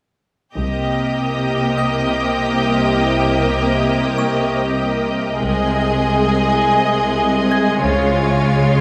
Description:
cinematic, suspense film score; 99 BPM; 4/4; straight; C phrygian; A4 = 441 Hz
rich studio viola section; accompaniment; 0.5-8.8 s; Ab3 to Bb3; -26 LUFS; equal
soft additive organ-like pad; sustained chords; 0.5-8.8 s; Ab4 to Ab5; -27 LUFS; equal; ensemble chorus, built-in reverb
rich studio violin section; melody; 0.6-8.8 s; Db5 to Eb5; -26 LUFS; equal
clear studio violin section; second line; 0.6-8.8 s; F4 to Ab4; -24 LUFS; equal
rich studio cello section; bass; 0.6-8.8 s; C3 to Db3; -24 LUFS; equal
rich studio double bass section; bass; 0.6-1.1, 5.4-8.4 s; C2 to Db2; -28 LUFS; equal
organ-like drone; drone; 1.3-8.8 s; C2 to Db2; -25 LUFS; equal; ensemble chorus, built-in reverb
rich studio violin section; texture; 0.6-5.1 s; Eb6 to Bb6; -33 LUFS; equal
music box; texture; 1.8-8.8 s; Eb5 to Ab6; -31 LUFS; equal
wet scoring stage reverb, RT60 1.9 s; -17 LUFS; mono
0.6-8.8 A section
0.6 Cm7; 5.4 Ab/C; 7.8 Db
| 0.55 1.16 1.76 2.37 | 2.98 3.58 4.19 4.79 | 5.40 6.01 6.61 7.22 | 7.83 8.43

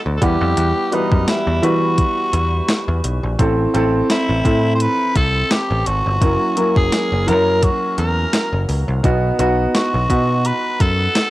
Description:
1980s-style pop; 85 BPM; 4/4; swing 55% on 16ths; E harmonic minor; A4 = 440 Hz
warm baby grand piano; accompaniment; 0.0-11.3 s; E3 to F#5; -20 LUFS; equal; cassette tape
picked electric bass; bass; 0.1-11.1 s; F#1 to E3; -19 LUFS; equal
raspy tenor saxophone; melody; 0.2-11.3 s; D#4 to C5; -21 LUFS; equal; cassette tape, analog delay, plate reverb
clean 12-bit digital drum machine; drums; 0.2-11.3 s; hi-hat, kick drum, snare drum, tambourine; -18 LUFS; equal; overdrive
moderate studio reverb, RT60 0.6 s; home recording on cassette; -15 LUFS; side -17 dB against mid
0.0-11.3 A section
0.2 Emadd9; 3.4 Am; 6.2 F#7; 9.0 B
| 0.57 1.27 1.98 2.69 | 3.39 4.10 4.80 5.51 | 6.22 6.92 7.63 8.33 | 9.04 9.74 10.45 11.16

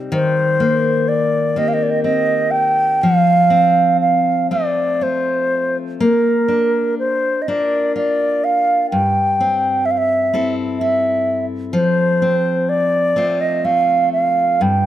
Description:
celtic folk, Celtic slow air; 62 BPM; 3/4; rubato; A4 = 439 Hz
picked steel-string acoustic guitar; accompaniment; 0.0-14.9 s; G2 to Bb4; -20 LUFS; left 3 dB
baroque flute; melody; 0.1-14.9 s; Bb4 to G5; -16 LUFS; right 2 dB
light reverb; close, detailed microphones; -14 LUFS; side -12 dB against mid
0.0-14.9 A section
0.1 Eb6; 3.0 F; 6.0 Bb; 8.9 C6/G; 11.7 F
| 0.12 1.06 2.02 | 3.00 4.00 5.01 | 6.01 6.99 7.96 | 8.92 9.86 10.80 | 11.74 12.69 13.65 | 14.62

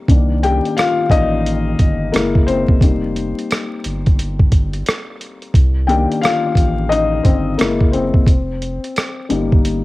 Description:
lo-fi hip hop; 88 BPM; 4/4; swing 64% on 16ths; A4 = 440 Hz
felt-muted upright piano; accompaniment; 0.0-9.8 s; Eb3 to G5; -18 LUFS; left 3 dB; cassette tape, low-pass filter
saturated sub bass; bass; 0.1-9.8 s; F1 to C2; -20 LUFS; equal; transformer saturation
boom bap sampler-style drum kit; drums; 0.1-9.8 s; hi-hat, kick drum, rim click; -14 LUFS; equal; cassette tape
little or no reverb; home recording on cassette, vinyl crackle; -14 LUFS; side -18 dB against mid
0.0-9.8 A section
felt piano solo 0.0-9.8
0.1 Cm7; 2.1 F#9; 2.8 F9sus4; 5.5 Cm7; 7.6 F#9; 8.3 F9sus4
| 0.09 0.77 1.45 2.13 | 2.81 3.50 4.18 4.86 | 5.54 6.22 6.91 7.59 | 8.27 8.95 9.63

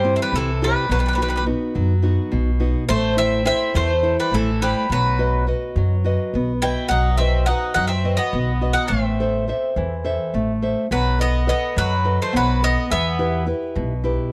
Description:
greek folk, Greek bouzouki band; 210 BPM (eighths); 7/8; straight; A4 = 440 Hz
Greek bouzouki; melody; 0.0-13.4 s; A4 to G5; -24 LUFS; equal
Greek bouzouki; second line; 0.0-13.4 s; E3 to E4; -30 LUFS; equal
nylon-string guitar; accompaniment; 0.0-14.3 s; B2 to E5; -26 LUFS; equal
upright bass; bass; 0.0-14.2 s; A1 to G2; -24 LUFS; equal
little or no reverb; close, detailed microphones; -20 LUFS; mono
0.0-14.3 A section
0.0 C; 0.9 B; 2.9 Am; 4.9 B; 8.9 Am; 10.9 B7; 12.9 Em
0.04 0.32 0.61 | 0.90 1.18 1.47 1.76 2.04 2.33 2.62 | 2.90 3.19 3.48 3.76 4.05 4.33 4.62 | 4.91 5.19 5.48 5.76 6.05 6.34 6.62 | 6.91 7.19 7.48 7.77 8.05 8.34 8.62 | 8.91 9.20 9.48 9.77 10.05 10.34 10.62 | 10.91 11.19 11.48 11.76 12.05 12.33 12.62 | 12.90 13.19 13.47 13.76 14.04

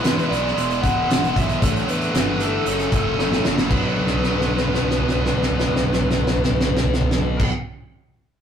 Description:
quiet-loud alternative rock; 115 BPM; 4/4; straight; B minor; A4 = 440 Hz
fuzz lead guitar; melody; 0.0-7.4 s; A4 to F#5; -25 LUFS; left 2 dB; distortion, slapback echo
overdriven electric guitar; riff; 0.0-7.5 s; F#2 to E4; -26 LUFS; right 3 dB
scooped high-gain guitar; riff; 0.0-7.5 s; F#2 to E4; -29 LUFS; left 4 dB; distortion
thick fuzz guitar; riff; 0.0-7.5 s; E2 to B3; -29 LUFS; equal
fuzz fingered electric bass; bass; 0.0-7.5 s; E1 to E2; -27 LUFS; equal; overdrive
loose indie drum kit; drums; 0.0-7.5 s; crash cymbal, hi-hat, kick drum, snare drum, toms; -21 LUFS; equal
moderate booth ambience, RT60 0.2 s; rough rehearsal-room recording, warm saturation; -18 LUFS; side -8 dB against mid
0.0-3.7 A section; 3.7-7.9 B section
drum fill 3.2-3.7, 4.0-7.4
0.0 E; 1.6 Asus4; 2.7 F#m; 3.7 Bm
0.04 0.56 1.08 | 1.61 2.13 2.66 3.18 | 3.70 4.23 4.75 5.27 | 5.80 6.32 6.84 7.37

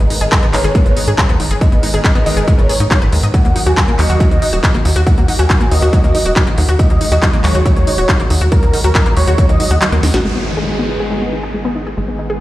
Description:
uplifting trance; 139 BPM; 4/4; straight; G# minor; A4 = 440 Hz
big supersaw lead; melody; 0.0-9.9 s; A#4 to G#5; -22 LUFS; equal; sidechain pumping, low-pass filter, dub echo
lush unison pad; sustained chords; 0.0-12.4 s; D#3 to A#4; -22 LUFS; equal; chorus, phaser, vintage 12-bit sampler grit, sidechain pumping
analog pluck; arpeggios; 0.0-12.3 s; F#3 to D#5; -20 LUFS; left 1 dB; chorus, sidechain pumping, dub echo
tight sequencer bass; bass; 0.0-12.4 s; D#1 to G#2; -16 LUFS; equal; sidechain pumping
techno drum kit; drums; 0.0-10.2 s; handclaps, hi-hat, snare drum; -20 LUFS; equal
electronic kick drum; drums; 0.3-9.5 s; -13 LUFS; equal
downlifter; sound effects; 10.2-12.4 s; -24 LUFS; left 1 dB
little or no reverb; played on a big sound system in a bare room, stone room reverb; -11 LUFS; side -16 dB against mid
0.0-10.2 A section; 10.2-12.4 B section
kick drops out 9.8-10.2; band accent 9.8; drum fill 10.0
0.0 G#m; 3.3 D#m; 10.2 G#m
0.32 0.75 1.18 | 1.61 2.04 2.48 2.91 | 3.34 3.77 4.20 4.63 | 5.07 5.50 5.93 6.36 | 6.79 7.22 7.66 8.09 | 8.52 8.95 9.38 9.81 | 10.25 10.68 11.11 11.54 | 11.97

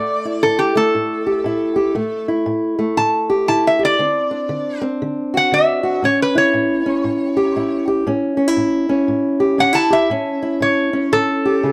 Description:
acoustic country blues, solo or duo; 118 BPM; 4/4; swing 61% on 8ths; A mixolydian; A4 = 440 Hz
lap resonator guitar; melody; 0.0-11.7 s; G4 to A5; -20 LUFS; equal
fingerpicked old ladder-braced acoustic guitar; accompaniment; 0.0-11.7 s; A2 to G4; -20 LUFS; equal
light reverb; close, detailed microphones; -17 LUFS; mono
0.0-11.7 A section
0.0 A5; 4.0 D7; 6.0 A7
0.43 0.94 1.45 | 1.96 2.47 2.98 3.48 | 3.99 4.50 5.01 5.52 | 6.03 6.54 7.05 7.55 | 8.06 8.57 9.08 9.59 | 10.10 10.61 11.12 11.63

